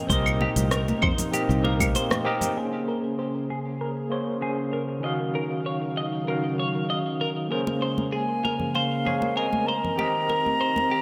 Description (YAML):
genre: sunset chillout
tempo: 97 BPM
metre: 4/4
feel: straight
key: Bb minor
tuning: A4 = 442 Hz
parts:
  - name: overdriven tine electric piano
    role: accompaniment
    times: 0.0-11.0 s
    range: Eb3 to Ab5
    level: -31 LUFS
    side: equal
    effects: medium tremolo, digital delay
  - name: lush unison pad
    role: sustained chords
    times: 0.0-11.0 s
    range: Bb2 to F5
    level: -34 LUFS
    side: equal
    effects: chorus
  - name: twelve-string electric guitar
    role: arpeggios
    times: 0.1-11.0 s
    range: G4 to Eb5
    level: -33 LUFS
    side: equal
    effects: spring reverb, low-pass filter, digital delay
  - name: fingered electric bass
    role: bass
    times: 0.1-1.9 s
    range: C2 to F2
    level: -27 LUFS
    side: equal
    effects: none
  - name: deep house drum kit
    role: drums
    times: 0.1-10.9 s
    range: claves, hi-hat, rim click, shaker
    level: -31 LUFS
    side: equal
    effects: low-pass filter on hats, low-pass filter on perc, low-pass filter on snare, low-pass filter on room
  - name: electronic kick drum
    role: drums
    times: 0.1-1.9 s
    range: none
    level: -30 LUFS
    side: equal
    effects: none
  - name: congas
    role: percussion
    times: 0.1-2.5, 7.7-10.9 s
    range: none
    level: -35 LUFS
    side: equal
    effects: none
  - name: concert flute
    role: melody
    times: 8.1-11.0 s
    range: F5 to Bb5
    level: -28 LUFS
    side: equal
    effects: digital delay
room: wet recital hall reverb, RT60 1.5 s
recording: none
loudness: -26 LUFS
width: mono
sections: 0.0-2.6 A section; 2.6-11.0 B section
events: filter sweep on analog synth pad 2.6-11.0; filter sweep on clean electric guitar 2.6-11.0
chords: 0.0 Cm7; 2.6 Bbm9; 5.0 Ebm9; 7.5 Bbm9; 9.7 Cm7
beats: | 0.09 0.71 1.33 1.95 | 2.56 3.18 3.80 4.42 | 5.04 5.66 6.28 6.89 | 7.51 8.13 8.75 9.37 | 9.99 10.61